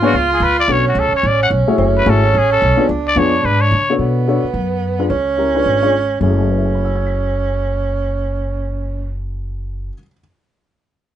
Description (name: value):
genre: jazz, small-group swing and bop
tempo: 217 BPM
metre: 4/4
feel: swing 60% on 8ths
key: F# minor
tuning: A4 = 439 Hz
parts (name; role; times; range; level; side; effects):
- breathy tenor saxophone; second line; 0.0-9.2 s; B3 to E#4; -18 LUFS; right 5 dB; none
- dark baby grand piano; accompaniment; 0.0-10.2 s; F#2 to B6; -18 LUFS; left 4 dB; none
- upright bass; bass; 0.0-9.9 s; F#1 to C#3; -19 LUFS; equal; none
- trumpet with straight mute; melody; 0.1-3.9 s; E#4 to F#5; -16 LUFS; left 3 dB; none
room: light reverb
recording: nothing above 10.3 kHz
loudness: -13 LUFS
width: side -11 dB against mid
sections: 0.0-4.0 A section; 4.0-6.2 B section; 6.2-8.4 C section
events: none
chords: 0.0 C#7b9; 0.7 Bm9; 1.8 F#m9; 2.9 C#7b9; 4.0 Bm7; 5.1 C#7b9; 6.2 F#m9